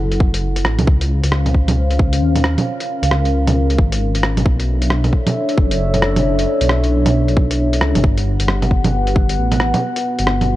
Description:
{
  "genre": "future garage",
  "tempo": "134 BPM",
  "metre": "4/4",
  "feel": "swing 62% on 16ths",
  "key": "unclear",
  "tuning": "A4 = 439 Hz",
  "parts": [
    { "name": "dark analog pad", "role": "sustained chords", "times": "0.0-10.6 s", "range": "B3 to F#5", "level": "-20 LUFS", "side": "left 1 dB", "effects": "chorus, phaser, sidechain pumping" },
    { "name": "dark detuned saw bass", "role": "bass", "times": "0.0-10.6 s", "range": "F#1 to D#2", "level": "-17 LUFS", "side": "equal", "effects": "sidechain pumping" },
    { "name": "lo-fi sampler-style drum kit", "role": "drums", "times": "0.1-10.5 s", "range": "bongos, hi-hat, rim click", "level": "-20 LUFS", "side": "right 1 dB", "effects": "vintage 12-bit sampler grit, small room ambience" },
    { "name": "electronic kick drum", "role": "drums", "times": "0.2-9.3 s", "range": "none", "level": "-15 LUFS", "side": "equal", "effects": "vintage 12-bit sampler grit, small room ambience" }
  ],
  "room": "light reverb",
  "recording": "none",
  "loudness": "-14 LUFS",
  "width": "side -15 dB against mid",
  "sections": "0.0-10.6 A section",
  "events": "none",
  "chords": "0.0 F#m7; 0.9 C#maj7; 4.5 Bm11; 8.0 Gmaj7",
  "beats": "0.43 | 0.87 1.32 1.77 2.22 | 2.66 3.11 3.56 4.01 | 4.46 4.90 5.35 5.80 | 6.25 6.69 7.14 7.59 | 8.04 8.48 8.93 9.38 | 9.83 10.28"
}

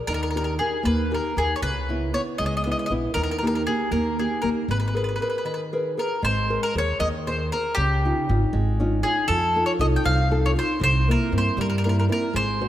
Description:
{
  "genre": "italian folk, Italian serenade",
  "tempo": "78 BPM (dotted quarters)",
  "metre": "6/8",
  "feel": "straight",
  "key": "G# harmonic minor, Ab major from 6.2 s",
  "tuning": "A4 = 440 Hz",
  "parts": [
    { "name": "nylon-string guitar", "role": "accompaniment", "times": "0.0-12.7 s", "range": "C3 to C5", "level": "-26 LUFS", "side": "equal", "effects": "none" },
    { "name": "mandolin", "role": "melody", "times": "0.1-12.7 s", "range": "G4 to G5", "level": "-25 LUFS", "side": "equal", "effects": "none" },
    { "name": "upright bass", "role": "bass", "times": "0.1-12.7 s", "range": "G#1 to G2", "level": "-25 LUFS", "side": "equal", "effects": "none" }
  ],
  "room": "moderate concert hall reverb, RT60 2.3 s",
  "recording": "none",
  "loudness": "-21 LUFS",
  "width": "side -12 dB against mid",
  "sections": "0.0-6.2 A section; 6.2-12.7 B section",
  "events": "break 5.4-6.2",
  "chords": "0.1 D#; 1.6 C#m7; 3.1 D#; 4.7 G#madd9; 6.2 Abadd9; 7.8 Dbadd9; 9.3 F7; 10.8 C7",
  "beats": "| 0.07 0.84 | 1.61 2.38 | 3.14 3.91 | 4.68 5.45 | 6.22 6.99 | 7.75 8.51 | 9.27 10.04 | 10.80 11.57 | 12.33"
}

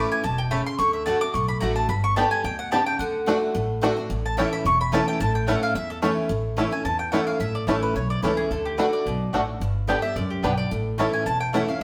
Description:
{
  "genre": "bluegrass",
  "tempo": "218 BPM",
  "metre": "4/4",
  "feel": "swing 53% on 8ths",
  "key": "A mixolydian",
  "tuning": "A4 = 441 Hz",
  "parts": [
    { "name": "mandolin", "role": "melody", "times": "0.0-11.8 s", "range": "G4 to D6", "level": "-28 LUFS", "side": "equal", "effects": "none" },
    { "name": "picked steel-string acoustic guitar", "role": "accompaniment", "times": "0.0-11.8 s", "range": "E2 to G4", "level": "-29 LUFS", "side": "equal", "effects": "none" },
    { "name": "mandolin", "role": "stabs", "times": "0.0-11.6 s", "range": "A3 to A5", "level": "-34 LUFS", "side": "equal", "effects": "none" },
    { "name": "upright bass", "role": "bass", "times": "0.2-11.6 s", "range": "E1 to E2", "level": "-31 LUFS", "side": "equal", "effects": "none" },
    { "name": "bluegrass banjo", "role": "arpeggios", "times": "2.2-11.6 s", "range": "A3 to G4", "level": "-29 LUFS", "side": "equal", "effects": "none" }
  ],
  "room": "wet stone room reverb, RT60 1.1 s",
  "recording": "band playing live in one room",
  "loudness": "-24 LUFS",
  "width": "mono",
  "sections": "0.0-6.3 A section; 6.3-11.8 B section",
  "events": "mandolin solo 0.0-6.3",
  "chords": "0.0 A; 0.8 D; 1.9 G; 3.0 D; 4.1 A; 8.5 D; 9.6 G; 10.7 A",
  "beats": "0.24 0.51 | 0.79 1.07 1.34 1.62 | 1.89 2.17 2.45 2.72 | 3.00 3.27 3.55 3.83 | 4.10 4.38 4.65 4.93 | 5.20 5.48 5.75 6.03 | 6.30 6.58 6.85 7.13 | 7.40 7.68 7.96 8.23 | 8.51 8.78 9.06 9.33 | 9.61 9.88 10.16 10.43 | 10.71 10.98 11.26 11.54 | 11.81"
}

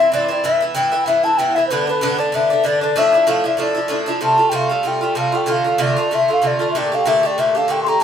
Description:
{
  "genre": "celtic folk",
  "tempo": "190 BPM",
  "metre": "4/4",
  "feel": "swing 55% on 8ths",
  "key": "D dorian, F major from 4.2 s",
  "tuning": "A4 = 441 Hz",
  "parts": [
    { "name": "mellow hollow wooden flute", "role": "melody", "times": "0.0-8.0 s", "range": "B4 to C6", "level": "-16 LUFS", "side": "left 1 dB", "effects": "none" },
    { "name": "Irish bouzouki", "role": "accompaniment", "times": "0.0-8.0 s", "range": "G2 to G4", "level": "-19 LUFS", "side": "right 1 dB", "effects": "none" }
  ],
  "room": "moderate studio reverb, RT60 0.7 s",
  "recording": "minimal, uncompressed stereo recording",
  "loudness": "-15 LUFS",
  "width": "side -8 dB against mid",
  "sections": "0.0-4.2 A section; 4.2-8.0 B section",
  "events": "none",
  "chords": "0.4 Em; 1.7 G; 3.0 Dmadd9; 4.2 Fadd9; 5.5 Dm7; 6.7 Gmadd9",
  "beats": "0.12 | 0.44 0.76 1.07 1.39 | 1.70 2.01 2.33 2.64 | 2.96 3.27 3.59 3.90 | 4.22 4.54 4.85 5.17 | 5.48 5.80 6.11 6.43 | 6.74 7.06 7.37 7.69 | 8.00"
}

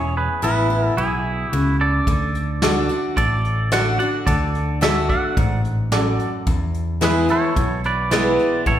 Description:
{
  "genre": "honky-tonk and classic country",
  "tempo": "109 BPM",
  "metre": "4/4",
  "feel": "straight",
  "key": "unclear",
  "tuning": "A4 = 440 Hz",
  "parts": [
    { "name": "twangy electric guitar", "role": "second line", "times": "0.0-8.8 s", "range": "E4 to F#5", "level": "-22 LUFS", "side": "right 2 dB", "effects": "none" },
    { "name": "picked steel-string acoustic guitar", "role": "accompaniment", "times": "0.0-8.8 s", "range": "E2 to F#4", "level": "-23 LUFS", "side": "left 2 dB", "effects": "none" },
    { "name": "fingered electric bass", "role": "bass", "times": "0.0-8.8 s", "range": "E1 to E2", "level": "-23 LUFS", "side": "equal", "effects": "none" },
    { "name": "soft brush drum kit", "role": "drums", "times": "2.1-8.8 s", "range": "hi-hat, kick drum, snare drum", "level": "-23 LUFS", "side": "equal", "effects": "none" },
    { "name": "bright upright piano", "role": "accompaniment", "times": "2.6-8.5 s", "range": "E4 to D5", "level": "-26 LUFS", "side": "right 4 dB", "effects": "none" }
  ],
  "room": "wet recital hall reverb, RT60 1.4 s",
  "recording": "recorded in a church or concert hall",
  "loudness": "-17 LUFS",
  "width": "side -11 dB against mid",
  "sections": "0.0-8.8 A section",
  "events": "clean electric guitar solo 0.0-8.8",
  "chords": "0.0 E; 2.1 D; 6.5 E",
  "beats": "0.42 0.97 1.52 | 2.07 2.62 3.17 3.72 | 4.27 4.82 5.37 5.92 | 6.47 7.01 7.57 8.11 | 8.66"
}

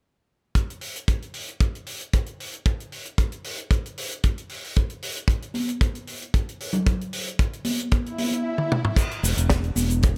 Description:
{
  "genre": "nu-disco, nu disco",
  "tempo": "114 BPM",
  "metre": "4/4",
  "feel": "straight",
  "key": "unclear",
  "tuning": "A4 = 439 Hz",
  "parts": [
    { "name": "kick drum", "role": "drums", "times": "0.6-10.1 s", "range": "none", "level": "-23 LUFS", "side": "equal", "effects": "none" },
    { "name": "tight funk drum kit", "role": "drums", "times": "0.6-10.1 s", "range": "crash cymbal, hi-hat, shaker, snare drum, toms", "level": "-32 LUFS", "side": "equal", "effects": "none" },
    { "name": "congas", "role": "percussion", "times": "5.5-9.9 s", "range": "none", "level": "-30 LUFS", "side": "equal", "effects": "none" },
    { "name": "swell", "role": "sound effects", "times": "8.1-9.0 s", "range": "none", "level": "-34 LUFS", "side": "equal", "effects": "none" },
    { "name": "fingered electric bass", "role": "bass", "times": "9.2-10.2 s", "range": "E1", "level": "-25 LUFS", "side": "equal", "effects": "tube saturation" }
  ],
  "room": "small room ambience",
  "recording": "none",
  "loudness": "-26 LUFS",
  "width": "mono",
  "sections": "0.6-9.0 A section; 9.0-10.2 B section",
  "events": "swell 8.1-9.0; drum fill 8.6-9.0",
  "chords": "none",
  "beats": "| 0.55 1.08 1.60 2.13 | 2.66 3.18 3.71 4.24 | 4.76 5.29 5.81 6.34 | 6.87 7.39 7.92 8.45 | 8.97 9.50 10.02"
}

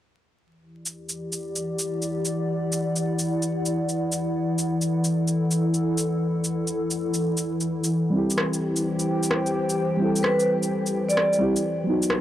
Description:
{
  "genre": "future garage",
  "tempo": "129 BPM",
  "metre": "4/4",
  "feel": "swing 67% on 16ths",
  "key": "E minor",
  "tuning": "A4 = 441 Hz",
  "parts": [
    { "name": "warbly tape-like pad", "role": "sustained chords", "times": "1.1-12.2 s", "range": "E3 to G5", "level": "-25 LUFS", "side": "left 1 dB", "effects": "chorus, built-in reverb" },
    { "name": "electronic shaker and rim click", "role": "drums", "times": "0.9-12.2 s", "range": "none", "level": "-28 LUFS", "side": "equal", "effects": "overdrive" },
    { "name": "muted felt-like synth keys", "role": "accompaniment", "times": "8.1-12.2 s", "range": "F#3 to A4", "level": "-25 LUFS", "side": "equal", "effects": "chorus, phaser, analog delay" },
    { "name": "vibraphone with medium hard mallets", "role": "melody", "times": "10.2-11.4 s", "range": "B4 to D5", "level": "-24 LUFS", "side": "equal", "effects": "vintage 12-bit sampler grit, analog delay" }
  ],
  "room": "light reverb",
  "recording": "dry, gritty hardware recording, vinyl crackle",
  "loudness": "-22 LUFS",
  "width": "side -12 dB against mid",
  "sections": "0.5-12.2 A section",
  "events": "none",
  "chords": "0.5 Em7; 4.2 Dadd9/E; 7.9 C/E; 11.6 B/E",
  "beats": "| 0.47 0.94 1.40 1.87 | 2.33 2.80 3.26 3.73 | 4.19 4.66 5.12 5.59 | 6.05 6.52 6.98 7.45 | 7.91 8.38 8.84 9.31 | 9.77 10.24 10.70 11.17 | 11.63 12.10"
}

